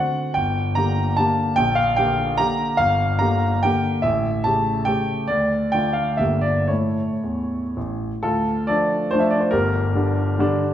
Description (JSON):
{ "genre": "classical, romantic triple-time dance for piano with dotted rhythms", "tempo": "110-161 BPM", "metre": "3/4", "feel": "rubato", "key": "D minor", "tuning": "A4 = 440 Hz", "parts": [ { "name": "warm grand piano", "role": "solo", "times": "0.0-10.7 s", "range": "G1 to Bb5", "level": "-18 LUFS", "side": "equal", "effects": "none" } ], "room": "wet recital hall reverb, RT60 1.6 s", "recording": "recorded in a church or concert hall", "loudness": "-18 LUFS", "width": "side -10 dB against mid", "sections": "0.0-8.2 A section; 8.2-10.7 B section", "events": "none", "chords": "0.3 Gm; 1.6 Gm/Bb; 2.8 Gm7; 4.0 A7; 5.3 Dm; 6.2 Gm; 6.7 A; 8.2 Dm; 9.5 Gm" }